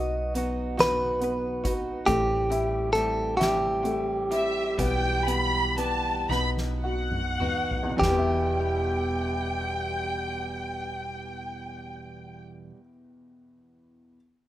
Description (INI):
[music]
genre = six-eight pop ballad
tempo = 33-46 BPM (dotted quarters)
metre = 6/8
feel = straight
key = E minor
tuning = A4 = 440 Hz
[part]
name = direct-recorded clean electric guitar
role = melody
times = 0.0-12.7 s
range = G4 to D#5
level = -27 LUFS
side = equal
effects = tape echo
[part]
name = warm upright piano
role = accompaniment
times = 0.0-14.2 s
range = E2 to F#4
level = -33 LUFS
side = left 3 dB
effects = none
[part]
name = direct-recorded clean electric guitar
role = arpeggios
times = 0.0-12.8 s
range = E2 to G4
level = -35 LUFS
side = right 4 dB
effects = none
[part]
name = hollow-body short-scale fingered electric bass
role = bass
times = 0.0-12.7 s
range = E1 to B1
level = -32 LUFS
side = equal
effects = none
[part]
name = soft-mallet drum kit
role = drums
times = 0.4-8.3 s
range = hi-hat, kick drum, snare drum, toms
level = -32 LUFS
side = equal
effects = none
[part]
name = warm studio violin section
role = second line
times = 4.3-12.4 s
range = E5 to B5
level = -30 LUFS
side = equal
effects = none
[sound]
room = small room reverb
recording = rough home demo mix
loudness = -24 LUFS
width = side -13 dB against mid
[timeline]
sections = 0.0-8.0 A section; 8.0-11.7 B section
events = slowing down 2.1-8.0; drum fill 6.3-8.0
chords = 0.0 B; 2.1 Am7; 4.8 Em/B; 6.3 B; 8.0 Em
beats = 0.79 | 2.08 3.40 | 4.79 6.30 | 8.01 9.83